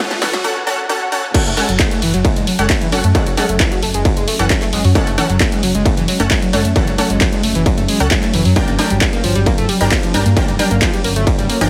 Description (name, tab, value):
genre	driving peak-time techno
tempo	133 BPM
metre	4/4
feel	straight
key	F# minor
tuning	A4 = 439 Hz
part	overdriven synth lead	riff	0.0-11.7 s	E3 to Bb3	-23 LUFS	equal	tube saturation, analog chorus, sidechain pumping, tape echo
part	rave stab	stabs	0.0-11.7 s	C#4 to G5	-24 LUFS	equal	chorus, built-in reverb, sidechain pumping, tape echo
part	riser and swell	sound effects	0.0-1.3 s	none	-30 LUFS	equal	none
part	punchy analog drum machine	drums	0.1-11.7 s	crash cymbal, handclaps, hi-hat, ride cymbal, snare drum	-23 LUFS	equal	overdrive, sidechain pumping on hats, sidechain pumping on cymbals
part	dark detuned saw bass	bass	0.2-11.7 s	F#1 to G2	-20 LUFS	equal	sidechain pumping
part	deep dark ambient pad	drone	2.6-11.7 s	F#3 to C#4	-27 LUFS	equal	chorus, built-in reverb, sidechain pumping
part	electronic kick drum	drums	1.3-11.4 s	none	-18 LUFS	equal	distortion
room	digital ambience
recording	heavily compressed radio sound, high-pass filter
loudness	-15 LUFS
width	mono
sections	0.0-1.3 A section; 1.3-11.7 B section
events	build-up 0.0-1.3; drum fill 0.0-0.4; riser 0.0-0.4; swell 0.4-1.3; drop 1.3-11.7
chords	0.0 F#m; 8.6 Gm